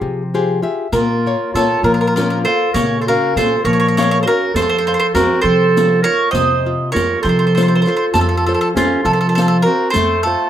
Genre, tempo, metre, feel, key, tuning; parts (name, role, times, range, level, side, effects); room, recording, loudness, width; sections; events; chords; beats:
italian folk, Italian serenade; 67 BPM (dotted quarters); 6/8; straight; Bb harmonic minor; A4 = 440 Hz
bowl-back mandolin; melody; 0.0-10.5 s; F4 to Eb5; -18 LUFS; equal
nylon-string guitar; accompaniment; 0.0-10.5 s; C3 to F5; -20 LUFS; left 4 dB
upright bass; bass; 0.0-10.3 s; F2 to F3; -19 LUFS; equal
warm clarinet; second line; 0.9-10.5 s; Db4 to C5; -18 LUFS; right 5 dB
riq; percussion; 0.9-10.2 s; -25 LUFS; left 4 dB
wet studio reverb, RT60 0.6 s; rough home demo mix; -13 LUFS; side -10 dB against mid
0.9-10.5 A section
nylon-string guitar fill 0.0-0.9
0.0 Fmadd9; 0.9 Bbm; 4.5 F
0.01 | 0.93 1.85 | 2.76 3.66 | 4.55 5.44 | 6.34 7.25 | 8.15 9.05 | 9.95